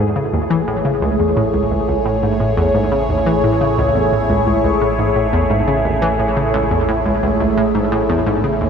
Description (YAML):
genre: ambient, sequencer-driven space music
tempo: 87 BPM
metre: 4/4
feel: straight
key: A major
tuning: A4 = 441 Hz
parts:
  - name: phased analog pad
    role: sustained chords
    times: 0.0-8.7 s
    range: A3 to C#5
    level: -17 LUFS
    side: equal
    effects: phaser, chorus
  - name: analog pluck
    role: riff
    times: 0.0-8.7 s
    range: C#2 to E3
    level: -18 LUFS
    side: equal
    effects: chorus, analog delay
  - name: fat analog bass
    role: bass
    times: 0.0-8.7 s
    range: A1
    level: -25 LUFS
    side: equal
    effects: none
room: wet cathedral reverb, RT60 5.4 s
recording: in a vast, echoing space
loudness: -14 LUFS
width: side -7 dB against mid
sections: 0.0-8.7 A section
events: none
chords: 0.0 Amaj7